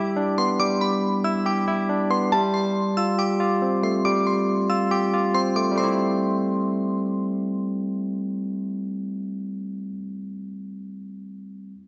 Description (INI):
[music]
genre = hip hop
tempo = 139 BPM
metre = 4/4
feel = half-time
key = A minor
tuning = A4 = 441 Hz
[part]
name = glassy synth bell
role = melody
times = 0.0-7.0 s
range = A5 to E6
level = -29 LUFS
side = equal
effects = chorus, phaser
[part]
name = barky tine electric piano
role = accompaniment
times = 0.0-11.7 s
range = G3 to G4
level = -25 LUFS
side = equal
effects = none
[sound]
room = wet concert hall reverb, RT60 2.6 s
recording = dark, warm production, nothing above 8.0 kHz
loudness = -24 LUFS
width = mono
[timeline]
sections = 0.0-5.8 A section; 5.8-9.2 B section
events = none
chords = 0.0 Em7; 2.3 Fadd9; 5.8 Am7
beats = 0.17 | 0.60 1.03 1.46 1.89 | 2.32 2.75 3.19 3.62 | 4.05 4.48 4.91 5.34 | 5.78 6.21 6.64 7.07 | 7.50 7.93 8.37 8.80